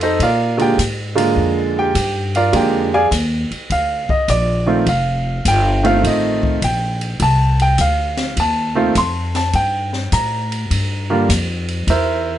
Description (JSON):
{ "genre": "jazz piano trio", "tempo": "103 BPM", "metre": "4/4", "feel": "swing 68% on 8ths", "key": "F mixolydian", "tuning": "A4 = 440 Hz", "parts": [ { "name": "clear baby grand piano", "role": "melody", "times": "0.0-12.4 s", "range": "D3 to C6", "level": "-17 LUFS", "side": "right 2 dB", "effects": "none" }, { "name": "upright bass", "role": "bass", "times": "0.0-12.4 s", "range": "F1 to Bb2", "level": "-19 LUFS", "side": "left 1 dB", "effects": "none" }, { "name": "open jazz drum kit", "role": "drums", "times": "0.0-12.1 s", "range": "hi-hat, kick drum, ride cymbal, snare drum", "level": "-25 LUFS", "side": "left 1 dB", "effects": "none" } ], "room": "light reverb", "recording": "nothing above 11.0 kHz", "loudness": "-15 LUFS", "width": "side -11 dB against mid", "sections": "0.0-12.4 A section", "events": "grand piano solo 0.0-12.4", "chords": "0.2 Bb7; 4.9 F7; 9.5 Gm7; 11.9 C7", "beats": "| 0.19 0.78 1.36 1.94 | 2.53 3.11 3.70 4.28 | 4.86 5.45 6.03 6.62 | 7.20 7.78 8.37 8.95 | 9.54 10.12 10.70 11.29 | 11.87" }